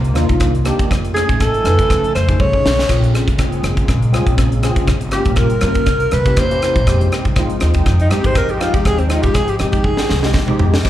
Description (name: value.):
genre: electric jazz fusion.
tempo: 121 BPM.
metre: 4/4.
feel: swing 55% on 16ths.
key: F minor.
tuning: A4 = 438 Hz.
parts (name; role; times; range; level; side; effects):
warbly tape-like pad; sustained chords; 0.0-10.9 s; C3 to G#5; -24 LUFS; equal; chorus, built-in reverb.
upright bass; bass; 0.0-10.9 s; G1 to F3; -18 LUFS; equal; none.
crisp fusion drum kit; drums; 0.0-10.9 s; crash cymbal, hi-hat, kick drum, rim click, snare drum, toms; -18 LUFS; equal; none.
tine electric piano; accompaniment; 0.1-10.9 s; Ab3 to B4; -22 LUFS; equal; medium stereo tremolo, ensemble chorus, slapback echo.
breathy alto saxophone; melody; 1.1-10.3 s; C4 to C#5; -19 LUFS; equal; slapback echo.
room: studio ambience.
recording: live gig heard through the venue's PA, club reverb.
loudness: -13 LUFS.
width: side -13 dB against mid.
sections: 0.0-10.8 A section.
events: alto saxophone solo 0.0-10.8; drum fill 2.4-2.9, 9.9-10.8.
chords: 0.0 Cm11; 0.9 F7alt; 2.9 Bbm9; 4.9 Gm7b5; 5.9 C7b9; 6.9 Fm9.